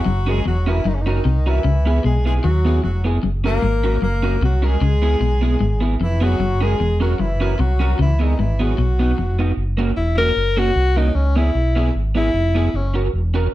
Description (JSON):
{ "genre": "ska", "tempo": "152 BPM", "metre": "4/4", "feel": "swing 54% on 8ths", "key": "F# mixolydian", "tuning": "A4 = 440 Hz", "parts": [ { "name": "mellow horn section", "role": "melody", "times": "0.0-9.4 s", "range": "C#3 to A#4", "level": "-24 LUFS", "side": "left 2 dB", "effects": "slapback echo" }, { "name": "electric guitar at the edge of break-up", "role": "riff", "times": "0.1-9.3 s", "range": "E2 to D#3", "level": "-23 LUFS", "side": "left 4 dB", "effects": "none" }, { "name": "fingered electric bass", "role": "bass", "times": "0.1-13.5 s", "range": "E1 to D#2", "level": "-18 LUFS", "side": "equal", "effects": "none" }, { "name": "electric guitar through a small old amp", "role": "accompaniment", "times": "0.3-13.5 s", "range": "A#3 to A#4", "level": "-24 LUFS", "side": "right 2 dB", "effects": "tube saturation, analog chorus, slapback echo" }, { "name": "clear alto saxophone", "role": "melody", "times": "10.0-13.0 s", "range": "C#4 to A#4", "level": "-20 LUFS", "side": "left 2 dB", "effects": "slapback echo" } ], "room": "light reverb", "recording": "dark, warm production", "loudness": "-16 LUFS", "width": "side -15 dB against mid", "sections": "0.0-9.6 A section; 9.6-13.5 B section", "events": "alto saxophone solo 9.6-13.5", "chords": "0.1 F#; 1.6 C#m7; 3.2 F#; 4.8 C#m7; 6.4 F#; 8.0 C#m7; 8.8 B; 9.6 F#; 11.2 C#m7; 12.7 F#" }